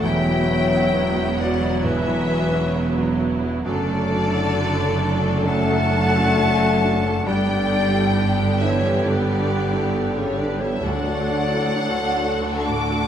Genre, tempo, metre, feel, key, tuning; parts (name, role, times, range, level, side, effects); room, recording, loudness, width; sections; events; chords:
cinematic; 67 BPM; 4/4; rubato; D major; A4 = 438 Hz
rich studio violin section; melody; 0.0-13.1 s; C#5 to D6; -28 LUFS; left 2 dB
dark studio violin section; second line; 0.0-13.1 s; D4 to A4; -29 LUFS; left 1 dB
silver concert flute; second line; 0.0-13.1 s; A4 to A5; -27 LUFS; equal
clear grand piano; accompaniment; 0.0-13.1 s; D2 to E4; -27 LUFS; equal
rich studio viola section; accompaniment; 0.0-13.1 s; D3 to D4; -27 LUFS; right 2 dB
mellow French horn section; sustained chords; 0.0-13.1 s; C#3 to D4; -25 LUFS; left 3 dB
clear studio double bass section; bass; 0.0-13.1 s; E1 to D2; -26 LUFS; right 2 dB
rich studio cello section; bass; 0.0-13.1 s; D2 to G2; -27 LUFS; right 3 dB
timpani; percussion; 10.8-12.1 s; D3; -34 LUFS; equal
wet recital hall reverb, RT60 1.5 s; -18 LUFS; side -9 dB against mid
0.0-13.1 A section
0.0 Emadd9; 3.6 D/F#; 7.3 G; 10.8 D